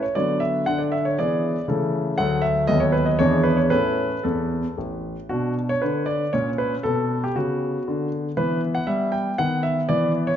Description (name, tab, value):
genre	classical-period piano sonatina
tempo	118 BPM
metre	3/4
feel	rubato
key	A major, B minor from 5.3 s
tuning	A4 = 440 Hz
part	clear concert grand piano	solo	0.0-10.4 s	A1 to G5	-20 LUFS	equal	none
room	wet recital hall reverb, RT60 1.7 s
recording	nothing above 7.9 kHz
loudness	-20 LUFS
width	side -9 dB against mid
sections	0.0-5.3 A section; 5.3-10.4 B section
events	none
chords	0.2 Bm/D; 0.7 E7/D; 1.7 A/C#; 2.2 D; 2.7 B7/D#; 3.2 E7; 3.7 A; 5.3 Bm; 6.3 A#m; 6.8 Bm; 8.4 Em; 9.4 B/D#